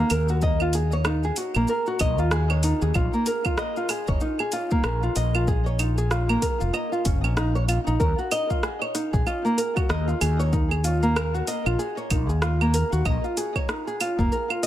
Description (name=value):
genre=organic downtempo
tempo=95 BPM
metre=4/4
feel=swing 59% on 16ths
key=Eb minor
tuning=A4 = 440 Hz
part: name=nylon-string guitar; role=arpeggios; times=0.0-14.7 s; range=Bb3 to Eb5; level=-25 LUFS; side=equal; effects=tape echo
part: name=mellow fretless electric bass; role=bass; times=0.1-14.3 s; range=F1 to Eb2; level=-24 LUFS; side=equal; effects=analog chorus, sidechain pumping
part: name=deep house drum kit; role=drums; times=0.1-14.7 s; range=claves, hi-hat, rim click, shaker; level=-30 LUFS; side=right 3 dB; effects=none
part: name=electronic kick drum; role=drums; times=0.4-14.3 s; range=none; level=-26 LUFS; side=equal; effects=overdrive
room=light reverb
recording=echo-heavy mix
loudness=-21 LUFS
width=side -12 dB against mid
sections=0.0-14.7 A section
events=none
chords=0.0 Ebm; 3.0 Bbm; 8.0 Eb5; 13.1 Bb7(no3)